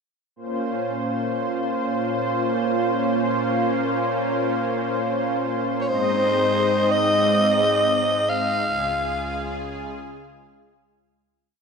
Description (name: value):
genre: synthwave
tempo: free time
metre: none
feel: none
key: Bb minor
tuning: A4 = 438 Hz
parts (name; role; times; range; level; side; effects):
- lush unison pad; sustained chords; 0.4-11.4 s; Db2 to Eb5; -22 LUFS; equal; chorus, shimmer reverb
- growling alto saxophone; melody; 5.8-9.7 s; C5 to F5; -21 LUFS; equal; shimmer reverb, ping-pong delay
room: wet lush hall reverb, RT60 1.8 s, small room ambience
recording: none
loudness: -20 LUFS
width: side -5 dB against mid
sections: 0.4-11.4 verse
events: fade-out 7.7-11.4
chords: 0.4 Bbmadd9; 5.9 Ab; 8.6 Db